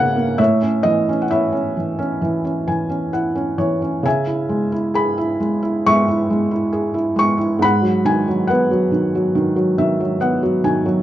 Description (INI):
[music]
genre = classical, lyrical solo piano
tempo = 65-71 BPM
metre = 4/4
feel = rubato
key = C# minor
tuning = A4 = 440 Hz
[part]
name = felt-muted upright piano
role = solo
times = 0.0-11.0 s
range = F#2 to C#6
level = -16 LUFS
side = equal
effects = none
[sound]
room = light reverb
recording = dark, warm production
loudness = -16 LUFS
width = side -13 dB against mid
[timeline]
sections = 0.0-11.0 A section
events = felt piano fill 2.2-4.1, 9.4-11.0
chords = 0.4 A; 4.1 C#m7; 7.6 G#m7